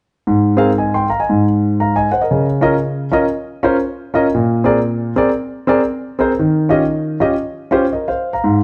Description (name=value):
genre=gospel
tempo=118 BPM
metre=4/4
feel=swing 60% on 8ths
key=unclear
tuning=A4 = 440 Hz
part: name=dark concert grand piano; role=accompaniment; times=0.3-8.6 s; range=Ab2 to C6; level=-16 LUFS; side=equal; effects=none
room=moderate large studio reverb, RT60 1.2 s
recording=dark, warm production, nothing above 10.4 kHz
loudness=-16 LUFS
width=mono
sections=0.3-8.6 A section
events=none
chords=0.3 Ab69; 1.3 N.C.; 2.3 Db69; 4.3 Bb9; 6.4 Eb9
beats=| 0.26 0.77 1.28 1.79 | 2.30 2.81 3.32 3.83 | 4.34 4.86 5.37 5.88 | 6.39 6.90 7.41 7.92 | 8.43